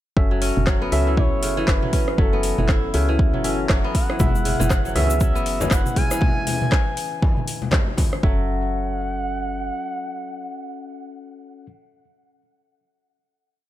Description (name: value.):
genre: afro house.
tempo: 119 BPM.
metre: 4/4.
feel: swing 59% on 16ths.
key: F# minor.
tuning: A4 = 440 Hz.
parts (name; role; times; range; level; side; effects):
tine electric piano; stabs; 0.2-11.7 s; B3 to E5; -28 LUFS; left 2 dB; overdrive, sidechain pumping, tape echo.
woody FM bass; bass; 0.2-9.7 s; F#1 to C#2; -24 LUFS; equal; sidechain pumping.
electronic kick drum; drums; 0.2-8.4 s; none; -20 LUFS; equal; overdrive.
kora; arpeggios; 0.3-10.4 s; C#3 to E4; -28 LUFS; equal; sidechain pumping, tape echo.
afro-pop drum kit; drums; 0.4-8.2 s; handclaps, hi-hat, rim click, toms; -27 LUFS; right 1 dB; overdrive.
expressive portamento lead; melody; 0.9-11.7 s; A4 to G#5; -29 LUFS; right 1 dB; chorus, tape echo.
congas; percussion; 4.2-8.1 s; none; -27 LUFS; left 4 dB; none.
tube shaker; percussion; 4.2-6.2 s; none; -32 LUFS; left 6 dB; none.
room: little or no reverb.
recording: none.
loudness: -18 LUFS.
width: side -13 dB against mid.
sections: 0.2-8.2 drop; 8.2-12.3 final chord.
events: drop 0.2-8.2.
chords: 0.2 F#m7; 4.2 E/F#; 8.2 F#m7.